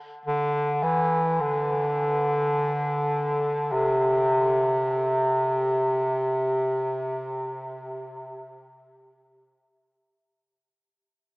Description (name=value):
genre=ambient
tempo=free time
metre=none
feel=none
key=unclear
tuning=A4 = 439 Hz
part: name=mellow bass clarinet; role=melody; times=0.3-9.6 s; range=C3 to E3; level=-23 LUFS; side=equal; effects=diffuse ambient delay
room=wet huge ambient reverb, RT60 9.6 s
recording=AM radio sound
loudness=-22 LUFS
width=side -25 dB against mid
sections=0.0-10.8 A section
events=fade-out 4.5-10.8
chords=none